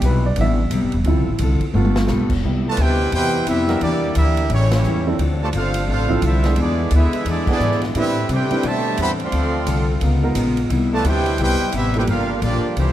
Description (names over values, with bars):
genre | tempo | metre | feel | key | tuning
jazz, big band swing | 174 BPM | 4/4 | swing 63% on 8ths | C major | A4 = 439 Hz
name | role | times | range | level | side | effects
picked steel-string acoustic guitar | accompaniment | 0.0-12.9 s | G2 to Bb4 | -25 LUFS | left 3 dB | none
warm baby grand piano | accompaniment | 0.0-12.1 s | E3 to E5 | -25 LUFS | right 2 dB | none
upright bass | bass | 0.0-12.9 s | E1 to C3 | -20 LUFS | equal | none
swinging big-band drum kit | drums | 0.0-12.9 s | crash cymbal, hi-hat, kick drum, ride cymbal, snare drum, toms | -29 LUFS | right 1 dB | none
edgy saxophone section | sustained chords | 2.5-12.9 s | B2 to F4 | -29 LUFS | left 2 dB | none
bright trumpet section | melody | 2.7-12.9 s | A3 to C6 | -24 LUFS | right 2 dB | none
clear trombone section | second line | 2.7-12.9 s | B2 to G4 | -25 LUFS | right 2 dB | none
room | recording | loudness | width
moderate concert hall reverb, RT60 2.2 s | none | -16 LUFS | side -12 dB against mid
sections
0.0-2.4 A section; 2.4-12.9 B section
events
grand piano solo 0.0-2.4; drum fill 1.7-2.1; band accent 4.7, 7.4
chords
0.0 Cmaj7; 1.1 Dm7; 1.7 G9; 2.4 Cmaj7; 3.8 Em7b5; 4.5 A7; 5.2 Dm7; 6.6 E7; 7.9 Am11; 9.3 Dm7; 10.0 Db13; 10.7 Cmaj7; 12.1 Gm7